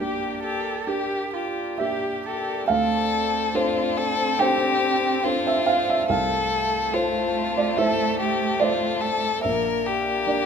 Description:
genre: neoclassical piano and strings.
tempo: 71 BPM.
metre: 4/4.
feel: rubato.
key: D minor.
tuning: A4 = 440 Hz.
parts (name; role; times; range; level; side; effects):
clear violin; melody; 0.0-10.5 s; F4 to Bb4; -24 LUFS; left 5 dB; none.
rich cello; second line; 0.0-10.5 s; A3 to A4; -30 LUFS; right 6 dB; none.
felt-muted upright piano; accompaniment; 0.0-10.5 s; Bb1 to G5; -25 LUFS; right 2 dB; none.
pedal harmonium; sustained chords; 0.0-10.5 s; Bb3 to Bb4; -35 LUFS; equal; none.
room: moderate scoring stage reverb, RT60 1.8 s.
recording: minimal, uncompressed stereo recording.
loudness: -21 LUFS.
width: side -6 dB against mid.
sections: 0.0-2.7 A section; 2.7-10.5 B section.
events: none.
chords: 0.0 Gm/Bb; 2.7 Dm7; 6.1 Fmaj7/C; 9.4 Bb.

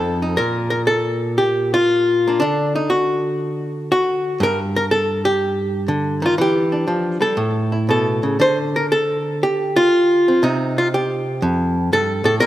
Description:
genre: solo jazz.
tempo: 121 BPM.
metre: 4/4.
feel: swing 68% on 8ths, rubato.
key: Bb major.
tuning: A4 = 440 Hz.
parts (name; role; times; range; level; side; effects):
archtop guitar, miked and amplified; solo; 0.0-12.5 s; F2 to C5; -16 LUFS; equal; none.
room: moderate lush hall reverb, RT60 2.5 s.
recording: rough home demo mix.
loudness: -16 LUFS.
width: side -14 dB against mid.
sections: 0.4-12.5 A section.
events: none.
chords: 0.4 Bbmaj7(no3); 2.4 N.C.; 4.4 G5; 6.4 Em7; 7.4 A; 8.4 Dm7; 10.4 N.C.; 11.4 F.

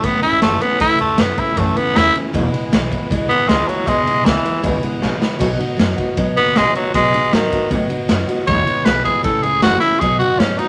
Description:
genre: rockabilly.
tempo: 156 BPM.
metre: 4/4.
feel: straight.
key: E major.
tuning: A4 = 440 Hz.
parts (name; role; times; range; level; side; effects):
raspy tenor saxophone; melody; 0.0-10.7 s; D#3 to C#5; -18 LUFS; equal; none.
picked steel-string acoustic guitar; accompaniment; 0.0-10.7 s; E2 to F#4; -24 LUFS; equal; none.
upright bass; bass; 0.0-10.6 s; E1 to A2; -27 LUFS; equal; none.
raw garage drum kit; drums; 0.0-10.7 s; crash cymbal, kick drum, ride cymbal, snare drum; -22 LUFS; equal; none.
room: moderate club reverb, RT60 0.6 s.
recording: none.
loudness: -16 LUFS.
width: mono.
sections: 0.0-10.7 A section.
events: drum fill 5.0-5.4.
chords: 0.0 A; 2.3 E; 5.4 B; 8.5 E; 9.2 A; 10.0 B.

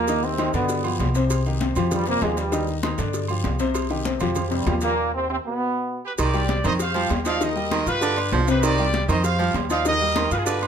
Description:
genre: latin, salsa.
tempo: 196 BPM.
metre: 4/4.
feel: straight.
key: C minor.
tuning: A4 = 441 Hz.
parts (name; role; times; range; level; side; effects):
bright trombone section; melody; 0.0-6.0 s; G2 to F4; -24 LUFS; right 2 dB; none.
warm baby grand piano; accompaniment; 0.0-10.7 s; C3 to F6; -26 LUFS; left 3 dB; none.
upright bass; bass; 0.0-10.7 s; C2 to G2; -26 LUFS; equal; none.
agogo bells and timbales; percussion; 0.1-10.7 s; none; -33 LUFS; right 8 dB; none.
congas; percussion; 0.1-10.7 s; none; -32 LUFS; left 4 dB; none.
cowbell; percussion; 0.1-10.6 s; none; -34 LUFS; left 4 dB; none.
guiro; percussion; 0.1-10.7 s; none; -39 LUFS; left 6 dB; none.
maracas; percussion; 0.1-10.7 s; none; -37 LUFS; right 7 dB; none.
clear trumpet section; melody; 6.1-10.7 s; G4 to F5; -25 LUFS; right 2 dB; none.
bright baritone saxophone; second line; 6.2-10.6 s; D3 to F3; -27 LUFS; right 6 dB; none.
room: moderate large studio reverb, RT60 1.0 s.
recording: none.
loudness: -20 LUFS.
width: side -8 dB against mid.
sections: 0.0-6.2 A section; 6.2-10.7 B section.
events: stop 5.0-6.2.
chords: 0.1 Eb; 0.7 G7; 1.3 Cm; 1.9 Fmadd9; 2.5 Eb; 3.1 G5; 3.7 Cm; 4.4 Fsus2; 5.0 Eb5; 5.6 N.C.; 6.2 Cm; 6.8 Fsus2; 7.4 Eb; 8.0 G7; 8.6 Cm; 9.2 Fsus2; 9.9 Eb.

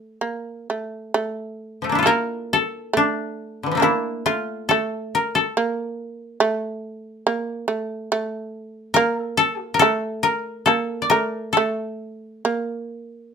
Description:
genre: japanese traditional, Japanese chamber music.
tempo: 69 BPM.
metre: 4/4.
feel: uneven beats, rubato.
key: A miyako bushi.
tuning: A4 = 440 Hz.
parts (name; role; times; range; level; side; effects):
koto; melody; 0.0-13.3 s; D3 to D5; -19 LUFS; left 3 dB; none.
shamisen; second line; 0.0-13.3 s; A3 to Bb3; -24 LUFS; right 4 dB; none.
room: light reverb.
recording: close, detailed microphones.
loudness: -20 LUFS.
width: side -6 dB against mid.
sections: 0.0-1.2 A section; 1.2-13.3 B section.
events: none.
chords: none.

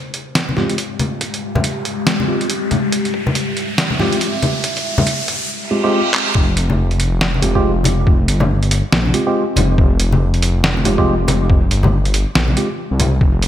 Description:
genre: deep dubstep.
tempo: 140 BPM.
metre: 4/4.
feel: swing 60% on 16ths, half-time.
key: F harmonic minor.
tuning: A4 = 441 Hz.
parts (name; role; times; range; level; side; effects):
deep dark ambient pad; sustained chords; 0.9-5.5 s; Ab3 to F5; -24 LUFS; left 2 dB; chorus, built-in reverb.
riser and reverse cymbal; sound effects; 1.3-6.4 s; none; -24 LUFS; right 2 dB; none.
trip hop sampler-style drum kit; drums; 0.1-13.5 s; handclaps, hi-hat, snare drum; -20 LUFS; equal; none.
congas; percussion; 0.5-13.1 s; none; -21 LUFS; left 2 dB; none.
mellow tine electric piano; stabs; 0.6-12.7 s; Ab3 to G4; -20 LUFS; right 1 dB; wide subtle chorus, low-pass filter, dub echo.
electronic kick drum; drums; 1.2-13.3 s; none; -16 LUFS; equal; high-pass filter on kick, high-pass filter on room.
dark detuned saw bass; bass; 6.4-13.5 s; F1 to C2; -16 LUFS; equal; none.
room: moderate lush hall reverb, RT60 1.9 s, digital ambience.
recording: bright 1980s-style digital production.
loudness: -14 LUFS.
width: side -11 dB against mid.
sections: 0.0-6.4 A section; 6.4-13.5 B section.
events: build-up 0.0-6.4; filter sweep on tine electric piano 0.0-6.4; filter sweep on ambient pad 0.0-6.4; riser 1.3-5.5; reverse cymbal 5.5-6.4; drum fill 6.1; drop 6.4-13.5.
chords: 0.0 Fmadd9.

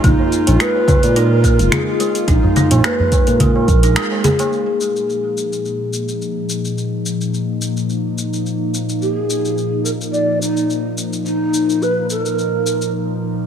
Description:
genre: organic downtempo.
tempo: 107 BPM.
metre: 4/4.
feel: swing 54% on 16ths.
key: unclear.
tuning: A4 = 438 Hz.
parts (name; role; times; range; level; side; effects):
mellow hollow low Native American-style wooden flute; melody; 0.0-4.2, 9.0-12.9 s; Eb4 to D5; -19 LUFS; right 1 dB; tape echo.
warbly tape-like pad; sustained chords; 0.0-13.5 s; Bb2 to F4; -22 LUFS; left 2 dB; chorus, built-in reverb, phaser, sidechain pumping.
kalimba; arpeggios; 0.0-4.5 s; Ab3 to Ab4; -22 LUFS; left 1 dB; tape echo.
smooth synth bass; bass; 0.0-4.0 s; F1 to Bb2; -15 LUFS; equal; sidechain pumping.
afro-pop drum kit; drums; 0.0-12.9 s; congas, finger snaps, hi-hat, shaker; -21 LUFS; left 1 dB; overdrive.
electronic kick drum; drums; 0.0-3.8 s; none; -15 LUFS; equal; overdrive.
tabla; percussion; 0.2-4.5 s; none; -24 LUFS; right 2 dB; none.
room: moderate lush hall reverb, RT60 1.8 s, digital ambience.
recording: none.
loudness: -15 LUFS.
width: side -8 dB against mid.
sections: 0.0-4.5 A section; 4.5-13.5 B section.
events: break 4.0-4.5, 12.9-13.5; band accent 4.0; filter sweep on ambient pad 4.5-13.5.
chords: 0.0 Bb7sus4; 4.5 Bbsus4.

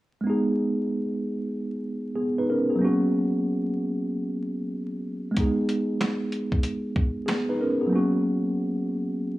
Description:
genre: hip hop, boom-bap hip-hop.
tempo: 94 BPM.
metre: 4/4.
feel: swing 62% on 16ths.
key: G# minor.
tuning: A4 = 440 Hz.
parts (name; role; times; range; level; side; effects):
mellow tine electric piano; accompaniment; 0.2-9.4 s; F#3 to B4; -24 LUFS; equal; medium stereo tremolo, high-pass filter, low-pass filter.
boom bap sampler-style drum kit; drums; 5.4-7.5 s; hi-hat, kick drum, snare drum; -26 LUFS; equal; none.
room: light reverb.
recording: vinyl crackle, small room ambience.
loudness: -24 LUFS.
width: side -17 dB against mid.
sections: 0.3-9.4 A section.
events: drums muted 7.9-9.4.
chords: 0.3 G#m; 2.8 F#; 5.4 G#m; 7.9 F#.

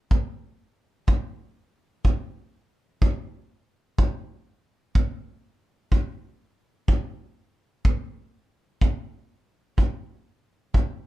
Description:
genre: blues.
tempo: 62 BPM (dotted quarters).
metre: 12/8.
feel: straight.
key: none.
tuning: none.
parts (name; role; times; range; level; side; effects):
kick drum; drums; 0.1-10.9 s; none; -21 LUFS; equal; none.
room: little or no reverb.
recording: none.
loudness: -24 LUFS.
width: side -17 dB against mid.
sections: 0.0-11.1 A section.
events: none.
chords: none.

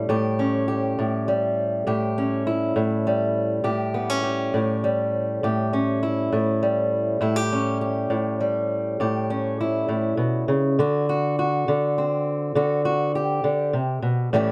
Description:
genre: blues.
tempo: 67 BPM (dotted quarters).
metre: 12/8.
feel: straight.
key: A mixolydian.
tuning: A4 = 439 Hz.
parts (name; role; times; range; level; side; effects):
fingerpicked old ladder-braced acoustic guitar; solo; 0.0-14.5 s; A2 to G4; -23 LUFS; equal; none.
room: light reverb.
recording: close, detailed microphones.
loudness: -23 LUFS.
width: mono.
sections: 0.0-3.7 A section; 3.7-14.5 A section.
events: none.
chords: 0.0 A7; 10.8 D7.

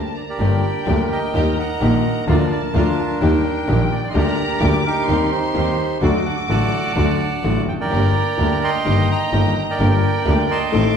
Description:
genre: tango.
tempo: 128 BPM.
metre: 4/4.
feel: rubato.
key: G harmonic minor.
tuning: A4 = 440 Hz.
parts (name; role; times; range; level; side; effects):
clear studio violin section; second line; 0.0-11.0 s; G5 to D6; -28 LUFS; left 1 dB; none.
warm baby grand piano; accompaniment; 0.0-10.9 s; G1 to A4; -20 LUFS; left 3 dB; none.
rich studio string section; stabs; 0.0-10.9 s; A3 to A4; -29 LUFS; right 3 dB; none.
clear double bass; bass; 0.0-10.9 s; F1 to Eb2; -21 LUFS; right 1 dB; none.
bandoneon; melody; 0.2-11.0 s; D4 to C6; -22 LUFS; right 3 dB; none.
room: wet recital hall reverb, RT60 1.4 s.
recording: recorded in a church or concert hall.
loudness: -16 LUFS.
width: side -7 dB against mid.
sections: 0.4-11.0 A section.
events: none.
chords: 0.4 Gm; 1.3 Eb; 2.3 Bb/D; 3.2 Eb; 4.1 Gm/D; 5.1 Cm/Eb; 6.0 D; 7.9 Gm.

